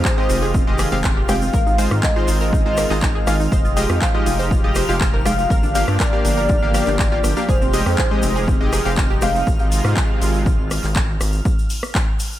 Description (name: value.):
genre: progressive house.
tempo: 121 BPM.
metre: 4/4.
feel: straight.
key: F minor.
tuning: A4 = 440 Hz.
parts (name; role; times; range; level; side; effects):
lush unison pad; sustained chords; 0.0-11.4 s; C3 to G4; -26 LUFS; right 1 dB; chorus, sidechain pumping.
wide unison pluck; arpeggios; 0.0-9.4 s; C4 to C5; -27 LUFS; right 1 dB; sidechain pumping, digital delay.
round analog bass; bass; 0.0-11.4 s; F1 to Ab2; -22 LUFS; equal; sidechain pumping.
electronic kick drum; drums; 0.0-12.1 s; none; -20 LUFS; equal; small room ambience.
twinkling granular texture; texture; 0.0-12.4 s; F6; -34 LUFS; equal; built-in reverb, sidechain pumping.
warm velvety synth lead; melody; 0.1-9.5 s; C5 to F5; -24 LUFS; equal; chorus, sidechain pumping, digital delay.
house drum kit; drums; 0.1-12.3 s; handclaps, hi-hat, rim click; -26 LUFS; equal; sidechain pumping on hats, small room ambience, sidechain pumping on cymbals.
tube shaker; percussion; 0.1-12.4 s; none; -33 LUFS; left 3 dB; none.
supersaw stab; stabs; 0.2-9.3 s; Ab3 to G5; -25 LUFS; left 1 dB; cassette tape, sidechain pumping, digital delay.
room: light reverb.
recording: none.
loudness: -15 LUFS.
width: side -13 dB against mid.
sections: 0.0-12.4 A section.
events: none.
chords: 0.0 Fm9; 1.5 Ab6; 3.5 Fm9; 5.5 Gm7; 7.5 Fm9; 9.5 Ab6; 11.5 N.C..